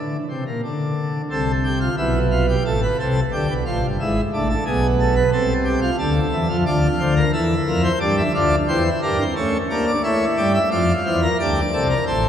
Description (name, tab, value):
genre	classical, baroque-style 3-part fugue for pipe organ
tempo	89 BPM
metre	4/4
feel	straight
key	D minor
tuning	A4 = 442 Hz
part	pipe organ, plenum	solo	0.0-12.3 s	G1 to E5	-17 LUFS	equal	none
room	wet cathedral reverb, RT60 4.4 s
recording	recorded in a church or concert hall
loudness	-17 LUFS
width	side -9 dB against mid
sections	0.0-12.3 A section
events	none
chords	0.0 N.C.; 1.3 Am/C; 2.7 Bm7b5/A; 4.0 E7/G#; 5.3 Am/C; 6.7 Dm; 8.0 Em7b5; 9.4 A7; 10.7 Dm